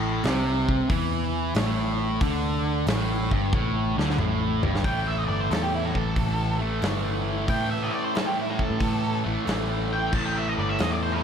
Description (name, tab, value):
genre	blues rock power trio and southern rock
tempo	91 BPM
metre	4/4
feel	swing 68% on 8ths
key	A minor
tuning	A4 = 440 Hz
part	fuzz guitar	riff	0.0-11.2 s	G2 to A3	-26 LUFS	right 1 dB	distortion
part	vintage muted picked electric bass	bass	0.0-11.2 s	G1 to A2	-28 LUFS	equal	none
part	big rock drum kit	drums	0.2-11.0 s	crash cymbal, hi-hat, kick drum, snare drum, toms	-29 LUFS	left 1 dB	none
part	octave-fuzz lead guitar	melody	4.8-11.2 s	E4 to A5	-29 LUFS	right 1 dB	distortion, slapback echo
room	light reverb, small room ambience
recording	none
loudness	-23 LUFS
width	side -7 dB against mid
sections	0.0-4.8 A section; 4.8-11.2 B section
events	drum fill 3.5-4.8; lead electric guitar solo 4.8-11.2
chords	0.0 Am; 4.8 A5